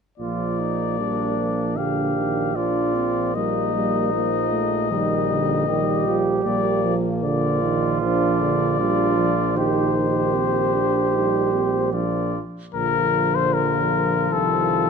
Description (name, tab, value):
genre	classical, brass quintet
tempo	77 BPM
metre	4/4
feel	straight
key	Bb major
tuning	A4 = 436 Hz
part	dark trumpet	melody	0.2-14.9 s	A4 to F5	-24 LUFS	left 10 dB	none
part	mellow flugelhorn	second line	0.2-14.9 s	D4 to G4	-26 LUFS	right 10 dB	none
part	mellow French horn	accompaniment	0.2-14.9 s	F3 to Eb4	-27 LUFS	left 5 dB	none
part	mellow trombone	accompaniment	0.2-14.9 s	D3 to G3	-27 LUFS	right 5 dB	none
part	warm tuba	bass	0.2-14.9 s	Bb1 to C2	-26 LUFS	right 5 dB	none
room	moderate recital hall reverb, RT60 1.5 s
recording	close, detailed microphones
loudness	-19 LUFS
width	side -6 dB against mid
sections	0.2-12.7 A section; 12.7-14.9 B section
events	none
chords	0.2 Bb; 3.3 Ebmaj9#11/Bb; 6.5 Bb; 9.6 F5/Bb; 12.7 Bb; 14.3 F7/C